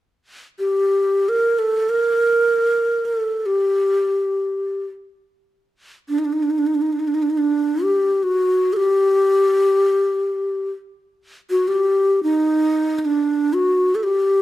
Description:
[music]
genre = Arabic maqam ensemble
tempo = free time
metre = none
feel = none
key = G maqam nahawand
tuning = A4 = 439 Hz
[part]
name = breathy mellow low ney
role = solo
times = 0.6-14.4 s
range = D4 to Bb4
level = -16 LUFS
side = equal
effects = none
[sound]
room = moderate recital hall reverb, RT60 1.4 s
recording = close, detailed microphones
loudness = -16 LUFS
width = side -14 dB against mid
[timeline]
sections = 0.1-14.4 A section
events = none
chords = none

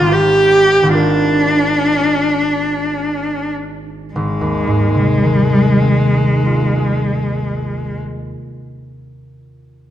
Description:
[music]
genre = classical, impressionist duo for cello and harp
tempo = 45-74 BPM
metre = 3/4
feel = rubato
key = Ab lydian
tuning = A4 = 440 Hz
[part]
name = rich cello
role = melody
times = 0.0-8.0 s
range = Ab3 to G4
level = -15 LUFS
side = equal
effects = none
[part]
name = concert harp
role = accompaniment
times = 0.0-9.2 s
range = Ab1 to C5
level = -17 LUFS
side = equal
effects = none
[sound]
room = moderate scoring stage reverb, RT60 1.9 s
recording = none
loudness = -12 LUFS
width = side -11 dB against mid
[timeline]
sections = 0.0-4.2 A section; 4.2-7.7 B section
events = slowing down 0.0-4.2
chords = 0.0 Abmaj7; 1.0 Bb13/Ab; 4.2 Ab6

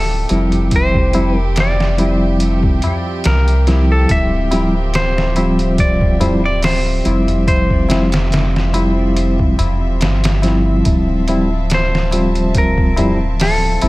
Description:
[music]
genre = trip hop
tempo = 71 BPM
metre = 4/4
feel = swing 54% on 16ths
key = D minor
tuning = A4 = 440 Hz
[part]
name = semi-hollow electric guitar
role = melody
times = 0.0-13.9 s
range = A4 to E5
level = -21 LUFS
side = left 1 dB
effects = tape echo
[part]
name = warm chamber string section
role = sustained chords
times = 0.0-13.9 s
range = F3 to A5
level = -24 LUFS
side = right 2 dB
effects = none
[part]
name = soft dub sub bass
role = bass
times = 0.0-13.9 s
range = D1 to C2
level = -17 LUFS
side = equal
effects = none
[part]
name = tabla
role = percussion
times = 0.1-13.9 s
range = none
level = -26 LUFS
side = left 2 dB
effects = none
[part]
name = tine electric piano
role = accompaniment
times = 0.3-13.9 s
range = F3 to F4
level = -18 LUFS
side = equal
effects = harmonic tremolo, tape echo
[part]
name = trip hop sampler-style drum kit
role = drums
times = 0.3-13.9 s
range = hi-hat, kick drum, snare drum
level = -18 LUFS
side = equal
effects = none
[sound]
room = digital ambience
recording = none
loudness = -12 LUFS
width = side -20 dB against mid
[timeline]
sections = 0.0-13.9 A section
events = none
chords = 0.0 Dm11

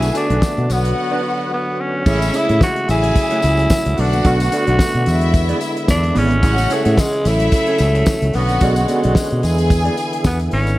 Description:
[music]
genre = disco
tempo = 110 BPM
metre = 4/4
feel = swing 56% on 16ths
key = B dorian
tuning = A4 = 439 Hz
[part]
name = growling tenor saxophone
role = melody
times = 0.0-10.8 s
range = G#3 to F#4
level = -20 LUFS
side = equal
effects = none
[part]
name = rich studio string section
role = second line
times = 0.0-10.5 s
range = E4 to G#5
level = -24 LUFS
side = left 1 dB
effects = none
[part]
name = mellow electric guitar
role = accompaniment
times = 0.0-10.7 s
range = A3 to D5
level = -25 LUFS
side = right 3 dB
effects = spring reverb
[part]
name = percussive tonewheel organ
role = sustained chords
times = 0.0-10.8 s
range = C#3 to F#4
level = -24 LUFS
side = equal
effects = overdrive, chorus vibrato, slow rotary speaker
[part]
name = fingered electric bass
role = bass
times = 0.0-10.8 s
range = G#1 to B2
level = -17 LUFS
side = equal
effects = none
[part]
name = damped 70s drum kit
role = drums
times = 0.0-10.8 s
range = crash cymbal, hi-hat, kick drum, snare drum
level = -18 LUFS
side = equal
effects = none
[part]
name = tambourine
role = percussion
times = 0.0-10.8 s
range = none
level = -34 LUFS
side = left 4 dB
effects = none
[sound]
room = light reverb, small room ambience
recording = vinyl crackle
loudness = -14 LUFS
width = side -17 dB against mid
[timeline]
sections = 0.0-2.1 A section; 2.1-10.8 A section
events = break 1.0-2.1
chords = 0.0 Bm7; 0.7 Bm; 2.1 Amaj7; 2.9 F#m7/A; 4.0 Bm7; 5.1 E7; 6.4 Amaj7; 7.3 F#m7/A; 8.3 Bm7; 9.4 E7

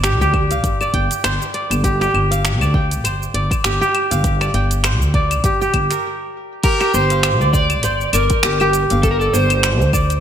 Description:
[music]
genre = organic downtempo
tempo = 100 BPM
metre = 4/4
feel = swing 56% on 16ths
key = G minor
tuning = A4 = 438 Hz
[part]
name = kora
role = arpeggios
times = 0.0-10.2 s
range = G4 to G5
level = -20 LUFS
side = equal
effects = ping-pong delay
[part]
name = upright bass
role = bass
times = 0.0-10.2 s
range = G1 to D2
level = -19 LUFS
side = equal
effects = none
[part]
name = afro-pop drum kit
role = drums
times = 0.0-10.2 s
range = claves, crash cymbal, finger snaps, hi-hat, shaker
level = -22 LUFS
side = equal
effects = small room reverb
[part]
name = bronze singing bowl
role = texture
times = 0.0-6.0 s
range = D5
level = -42 LUFS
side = left 3 dB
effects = none
[part]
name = electronic kick drum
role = drums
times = 0.3-10.1 s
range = none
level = -19 LUFS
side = equal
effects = small room reverb
[part]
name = electric slide guitar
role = melody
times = 6.6-9.9 s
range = A4 to D5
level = -19 LUFS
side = equal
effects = ping-pong delay
[sound]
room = moderate lush hall reverb, RT60 1.7 s, small room ambience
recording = bright 1980s-style digital production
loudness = -14 LUFS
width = side -9 dB against mid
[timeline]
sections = 0.0-6.6 A section; 6.6-10.2 B section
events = stop 6.0-6.6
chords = 0.0 G7(no3); 6.6 Gm7

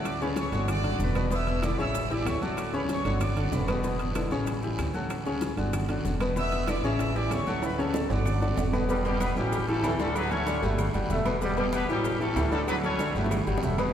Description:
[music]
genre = latin, salsa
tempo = 190 BPM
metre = 4/4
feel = straight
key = D major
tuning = A4 = 444 Hz
[part]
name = brilliant trumpet section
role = melody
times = 0.0-3.7, 6.4-8.7 s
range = A4 to E6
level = -34 LUFS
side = right 2 dB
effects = none
[part]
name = bright grand piano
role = accompaniment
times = 0.0-13.9 s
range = B2 to G5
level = -30 LUFS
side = left 2 dB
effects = none
[part]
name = upright bass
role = bass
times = 0.0-13.9 s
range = E1 to D2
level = -30 LUFS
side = equal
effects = none
[part]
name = claves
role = percussion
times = 0.0-13.9 s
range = none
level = -48 LUFS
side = equal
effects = none
[part]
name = congas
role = percussion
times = 0.0-13.9 s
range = none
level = -37 LUFS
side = equal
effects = none
[part]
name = bongos and cowbell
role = percussion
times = 0.1-13.9 s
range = none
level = -40 LUFS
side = left 3 dB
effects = none
[part]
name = guiro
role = percussion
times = 0.1-13.9 s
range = none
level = -46 LUFS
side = right 3 dB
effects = none
[part]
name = maracas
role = percussion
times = 0.1-13.9 s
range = none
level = -49 LUFS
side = left 6 dB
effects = none
[part]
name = timbales and agogo bells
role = percussion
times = 0.1-13.9 s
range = none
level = -37 LUFS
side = right 4 dB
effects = none
[part]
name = bright trombone section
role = second line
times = 8.9-13.8 s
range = E3 to A3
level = -33 LUFS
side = right 1 dB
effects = none
[part]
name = brilliant horn section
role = melody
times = 9.1-13.1 s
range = G3 to C#5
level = -32 LUFS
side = left 1 dB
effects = none
[sound]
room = wet cathedral reverb, RT60 4.5 s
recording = recorded in a church or concert hall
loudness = -25 LUFS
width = side -9 dB against mid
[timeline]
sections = 0.0-8.9 A section; 8.9-13.9 B section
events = drum fill 7.6-8.9, 13.2-13.9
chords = 0.0 Dmaj7; 0.7 Gmaj7; 1.3 E5; 1.9 A7; 2.6 Dmaj7; 3.2 Gmaj7; 3.8 E5; 4.5 A7; 5.1 Dmaj7; 5.7 Gmaj7; 6.4 E5; 7.0 A7; 7.6 Dmaj7; 8.3 Gmaj7; 8.9 Em7; 9.5 A7; 10.2 Dmaj7; 10.8 Gmaj7; 11.4 Em7; 12.0 A7; 12.7 Dmaj7; 13.3 Gmaj7

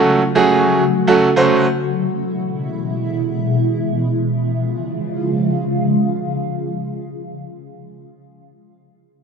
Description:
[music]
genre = pop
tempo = free time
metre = none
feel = none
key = unclear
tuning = A4 = 440 Hz
[part]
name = clear baby grand piano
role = accompaniment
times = 0.0-1.6 s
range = Gb3 to C5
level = -13 LUFS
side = right 3 dB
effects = none
[part]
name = shimmering ambient pad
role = sustained chords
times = 0.0-7.2 s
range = B2 to Gb4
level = -19 LUFS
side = left 1 dB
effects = chorus, built-in reverb, phaser
[sound]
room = light reverb, digital ambience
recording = dry, gritty hardware recording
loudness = -15 LUFS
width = side -6 dB against mid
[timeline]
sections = 0.0-4.1 A section; 4.1-6.4 B section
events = none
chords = 0.0 Gbm; 1.8 E; 4.1 Db

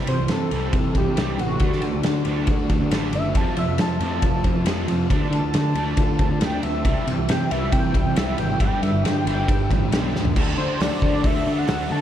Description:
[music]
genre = indie rock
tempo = 137 BPM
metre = 4/4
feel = straight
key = unclear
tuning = A4 = 440 Hz
[part]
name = overdriven electric guitar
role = riff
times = 0.0-12.0 s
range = F2 to A4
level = -28 LUFS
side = right 4 dB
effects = ensemble chorus, analog delay
[part]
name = raw garage guitar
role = riff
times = 0.0-12.0 s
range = G2 to A4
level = -28 LUFS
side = left 5 dB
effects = overdrive
[part]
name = wide unison lead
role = melody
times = 0.1-12.0 s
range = F#4 to A5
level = -28 LUFS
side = equal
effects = analog delay
[part]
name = fuzz picked electric bass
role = bass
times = 0.1-12.0 s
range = F#1 to F3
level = -26 LUFS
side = equal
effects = overdrive
[part]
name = loose indie drum kit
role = drums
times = 0.1-11.8 s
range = crash cymbal, hi-hat, kick drum, ride cymbal, snare drum, toms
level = -23 LUFS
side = equal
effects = none
[sound]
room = light reverb, small room ambience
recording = none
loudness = -19 LUFS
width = side -10 dB against mid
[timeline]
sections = 0.0-10.4 A section; 10.4-12.0 B section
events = analog synth lead solo 0.0-10.4; drum fill 10.1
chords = 0.0 C; 1.6 D; 3.4 F; 5.1 Dm7; 6.9 C; 8.6 G; 10.4 D

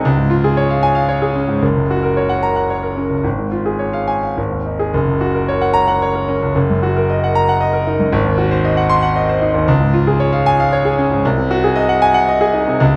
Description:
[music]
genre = classical, virtuoso piano study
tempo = 114 BPM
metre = 3/4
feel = rubato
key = Db major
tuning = A4 = 440 Hz
[part]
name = clear concert grand piano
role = solo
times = 0.0-13.0 s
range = Gb1 to C6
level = -16 LUFS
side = equal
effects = none
[sound]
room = moderate recital hall reverb, RT60 1.4 s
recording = close, detailed microphones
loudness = -16 LUFS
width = mono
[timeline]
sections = 0.0-4.9 A section; 4.9-13.0 A section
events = none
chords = 0.1 Db; 1.6 Gb; 3.2 Db/Ab; 4.4 Ab5; 4.9 Gb; 6.6 Ebm/Gb; 8.1 Ab7; 9.7 Db; 11.2 Ab7/C

